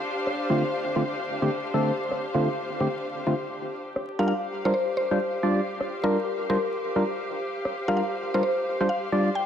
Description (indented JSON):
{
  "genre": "UK garage, two-step garage",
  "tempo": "130 BPM",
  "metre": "4/4",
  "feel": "swing 62% on 16ths",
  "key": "G minor",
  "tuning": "A4 = 439 Hz",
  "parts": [
    { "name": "muted studio string section", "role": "texture", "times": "0.0-9.5 s", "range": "D4 to F5", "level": "-31 LUFS", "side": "left 1 dB", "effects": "none" },
    { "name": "electronic rim click", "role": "drums", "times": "0.3-7.7 s", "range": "none", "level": "-33 LUFS", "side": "equal", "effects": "low-pass filter on snare" },
    { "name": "percussive organ stab", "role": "stabs", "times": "0.5-9.3 s", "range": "D3 to D5", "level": "-26 LUFS", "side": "equal", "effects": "chorus, diffuse ambient delay" },
    { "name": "mallet-like synth pluck", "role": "melody", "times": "4.2-9.5 s", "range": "Bb4 to G5", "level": "-28 LUFS", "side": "left 1 dB", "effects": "chorus, diffuse ambient delay" }
  ],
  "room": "wet plate reverb, RT60 1.3 s",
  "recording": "dreamy mix soaked in reverb, vinyl crackle",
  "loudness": "-24 LUFS",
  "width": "side -8 dB against mid",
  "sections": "0.0-9.5 A section",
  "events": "none",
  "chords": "0.0 Dm7; 3.8 Gm7"
}